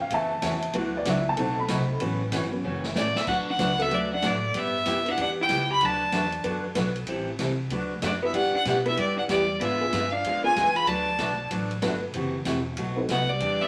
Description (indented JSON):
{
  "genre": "country, western swing",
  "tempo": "190 BPM",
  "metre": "4/4",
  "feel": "swing 63% on 8ths",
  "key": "D major",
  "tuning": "A4 = 440 Hz",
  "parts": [
    { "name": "honky-tonk upright piano", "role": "accompaniment", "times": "0.0-13.1 s", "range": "F#3 to B5", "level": "-32 LUFS", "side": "equal", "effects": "none" },
    { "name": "upright bass", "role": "bass", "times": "0.0-13.7 s", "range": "E1 to B2", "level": "-37 LUFS", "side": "equal", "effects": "none" },
    { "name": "picked steel-string acoustic guitar", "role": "accompaniment", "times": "0.1-13.6 s", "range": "B2 to B4", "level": "-32 LUFS", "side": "equal", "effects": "none" },
    { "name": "swinging big-band drum kit", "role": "drums", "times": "0.1-13.5 s", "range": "crash cymbal, hi-hat, kick drum, ride cymbal, snare drum", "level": "-37 LUFS", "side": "equal", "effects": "none" },
    { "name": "rich fiddle", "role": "melody", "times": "3.0-13.7 s", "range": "D5 to B5", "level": "-28 LUFS", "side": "equal", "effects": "none" },
    { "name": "vintage hollow-body jazz guitar", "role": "second line", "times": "3.0-13.7 s", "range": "G3 to G4", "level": "-35 LUFS", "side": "equal", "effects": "none" }
  ],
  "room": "wet studio reverb, RT60 0.7 s",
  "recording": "vinyl crackle",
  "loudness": "-26 LUFS",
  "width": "mono",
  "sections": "0.0-3.3 A section; 3.3-13.7 B section",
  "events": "honky-tonk piano solo 0.0-3.3; drum fill 2.6-3.3",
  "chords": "0.0 A6; 0.7 D6; 1.4 B7b9; 2.0 A6; 3.3 D6; 4.5 G6; 5.8 D6; 7.1 Am7; 7.7 D6; 8.3 G6; 9.6 G#dim7; 10.9 D6; 12.1 F#m7b5; 12.8 B7b9"
}